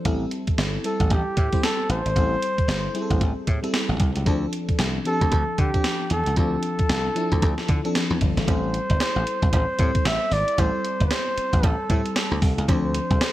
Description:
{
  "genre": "R&B, new jack swing",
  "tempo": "114 BPM",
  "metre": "4/4",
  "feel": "swing 60% on 16ths",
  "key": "A minor",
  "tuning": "A4 = 438 Hz",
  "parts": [
    { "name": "FM electric piano with soft pad layer", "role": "accompaniment", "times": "0.0-13.3 s", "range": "F3 to C5", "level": "-28 LUFS", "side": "left 2 dB", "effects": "chorus" },
    { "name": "dry thumbed slap bass", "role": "bass", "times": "0.1-13.2 s", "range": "G1 to D3", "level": "-25 LUFS", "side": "equal", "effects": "none" },
    { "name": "gated 80s digital drum machine", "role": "drums", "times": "0.1-13.3 s", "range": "hi-hat, kick drum, snare drum", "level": "-23 LUFS", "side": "equal", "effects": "gated reverb, gated reverb snare" },
    { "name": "trumpet with bucket mute", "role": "melody", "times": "0.9-13.3 s", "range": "G4 to E5", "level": "-26 LUFS", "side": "equal", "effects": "none" },
    { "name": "cowbell", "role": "percussion", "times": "8.5-13.3 s", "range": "none", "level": "-37 LUFS", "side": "right 6 dB", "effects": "none" }
  ],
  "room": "light reverb",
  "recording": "bright 1980s-style digital production",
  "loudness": "-20 LUFS",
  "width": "side -14 dB against mid",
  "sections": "0.0-8.5 A section; 8.5-13.3 B section",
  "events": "none",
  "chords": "0.1 Am7; 4.3 Dm7; 8.5 Am7; 12.7 Dm7",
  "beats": "| 0.05 0.58 1.11 1.63 | 2.16 2.69 3.21 3.74 | 4.26 4.79 5.32 5.84 | 6.37 6.90 7.42 7.95 | 8.47 9.00 9.53 10.05 | 10.58 11.11 11.63 12.16 | 12.69 13.21"
}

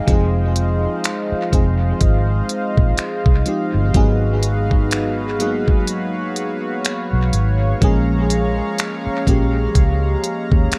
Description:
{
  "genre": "contemporary R&B",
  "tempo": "62 BPM",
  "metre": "4/4",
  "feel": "swing 58% on 16ths",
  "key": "F minor",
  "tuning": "A4 = 437 Hz",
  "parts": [
    { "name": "FM electric piano with soft pad layer", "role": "accompaniment", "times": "0.0-10.8 s", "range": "F3 to Ab4", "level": "-24 LUFS", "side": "equal", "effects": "chorus, phaser, dub echo" },
    { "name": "chorused pulse-width pad", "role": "sustained chords", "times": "0.0-10.8 s", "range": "Ab3 to Bb5", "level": "-28 LUFS", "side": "equal", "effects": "none" },
    { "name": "vintage muted fingered electric bass", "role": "bass", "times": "0.1-10.7 s", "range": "F1 to Eb2", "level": "-21 LUFS", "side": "equal", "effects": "none" },
    { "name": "smooth R&B drum kit", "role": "drums", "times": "0.1-10.8 s", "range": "finger snaps, hi-hat, kick drum", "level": "-20 LUFS", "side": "equal", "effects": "none" }
  ],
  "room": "light reverb, digital ambience",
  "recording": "echo-heavy mix",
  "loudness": "-18 LUFS",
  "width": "mono",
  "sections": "0.1-10.8 A section",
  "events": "none",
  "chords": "0.0 Fm9; 3.9 Abm7; 7.8 Bbm7",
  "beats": "| 0.07 1.04 2.01 2.98 | 3.95 4.91 5.88 6.85 | 7.82 8.78 9.75 10.72"
}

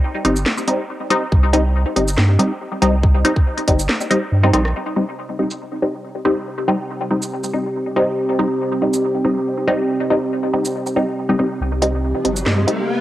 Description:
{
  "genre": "deep dubstep",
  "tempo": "140 BPM",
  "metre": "4/4",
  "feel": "swing 54% on 16ths, half-time",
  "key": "C minor",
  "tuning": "A4 = 440 Hz",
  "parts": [
    { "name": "filtered dub chord stab", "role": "stabs", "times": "0.2-12.8 s", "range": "G3 to Eb4", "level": "-19 LUFS", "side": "equal", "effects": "phaser, cassette tape, dub echo" },
    { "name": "saturated sub bass", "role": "bass", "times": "0.2-4.7, 11.6-12.7 s", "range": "G1 to G2", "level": "-18 LUFS", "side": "equal", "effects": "none" },
    { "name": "garage drum kit", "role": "drums", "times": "0.2-12.8 s", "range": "hi-hat, rim click, shaker, snare drum", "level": "-22 LUFS", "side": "equal", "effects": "low-pass filter on hats, cassette tape, low-pass filter on perc, low-pass filter on snare, low-pass filter on room" },
    { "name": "electronic kick drum", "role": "drums", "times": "1.3-3.8 s", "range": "none", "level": "-15 LUFS", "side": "equal", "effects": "cassette tape" },
    { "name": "dark analog pad", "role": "sustained chords", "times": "4.7-13.0 s", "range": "C4 to G4", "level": "-22 LUFS", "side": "right 1 dB", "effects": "chorus, cassette tape" },
    { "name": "riser", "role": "sound effects", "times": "12.0-13.0 s", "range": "none", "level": "-24 LUFS", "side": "equal", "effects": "none" }
  ],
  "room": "moderate spring reverb, RT60 1.8 s",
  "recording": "home recording on cassette",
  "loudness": "-16 LUFS",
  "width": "side -14 dB against mid",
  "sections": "0.0-4.7 A section; 4.7-11.6 B section; 11.6-13.0 C section",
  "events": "drum fill 4.4-4.7; build-up 11.6-13.0; riser 12.0-13.0",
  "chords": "0.0 Cm",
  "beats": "0.03 0.46 0.89 | 1.32 1.75 2.18 2.60 | 3.03 3.46 3.89 4.32 | 4.75 5.18 5.61 6.03 | 6.46 6.89 7.32 7.75 | 8.18 8.61 9.03 9.46 | 9.89 10.32 10.75 11.18 | 11.61 12.03 12.46 12.89"
}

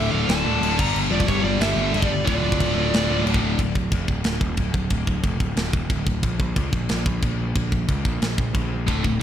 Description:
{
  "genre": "heavy metal",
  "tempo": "182 BPM",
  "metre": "4/4",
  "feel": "straight",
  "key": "D minor",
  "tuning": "A4 = 440 Hz",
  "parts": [
    { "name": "high-gain lead guitar", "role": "melody", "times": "0.0-3.2 s", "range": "C#5 to Bb5", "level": "-27 LUFS", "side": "right 1 dB", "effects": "distortion, ping-pong delay" },
    { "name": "high-gain lead guitar", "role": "second line", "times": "0.0-3.2 s", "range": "F4 to D5", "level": "-33 LUFS", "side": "right 2 dB", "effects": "distortion" },
    { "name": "high-gain distorted guitar", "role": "riff", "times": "0.0-3.6, 8.9-9.2 s", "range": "D2 to G3", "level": "-26 LUFS", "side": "left 12 dB", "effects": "distortion" },
    { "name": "scooped high-gain guitar", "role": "riff", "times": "0.0-3.6, 8.9-9.2 s", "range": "D2 to G3", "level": "-28 LUFS", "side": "right 13 dB", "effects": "distortion" },
    { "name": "tight distorted guitar", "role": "riff", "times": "0.0-3.6 s", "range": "D2 to G3", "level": "-30 LUFS", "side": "right 1 dB", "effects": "distortion" },
    { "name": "fuzz picked electric bass", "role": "bass", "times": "0.0-9.2 s", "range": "D1 to Db2", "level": "-25 LUFS", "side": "equal", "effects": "overdrive" },
    { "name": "tight metal drum kit", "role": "drums", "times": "0.3-9.1 s", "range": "china cymbal, crash cymbal, kick drum, snare drum", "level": "-24 LUFS", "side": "equal", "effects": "none" }
  ],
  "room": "little or no reverb",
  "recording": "none",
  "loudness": "-20 LUFS",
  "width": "side -10 dB against mid",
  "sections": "0.0-3.6 A section; 3.6-9.2 B section",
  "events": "none",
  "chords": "0.0 Dm; 0.8 G5; 2.3 Dm; 3.6 N.C.",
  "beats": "0.29 0.62 | 0.95 1.28 1.61 1.94 | 2.27 2.60 2.92 3.25 | 3.58 3.92 4.25 4.58 | 4.91 5.24 5.57 5.90 | 6.23 6.56 6.89 7.22 | 7.55 7.88 8.21 8.54 | 8.87 9.21"
}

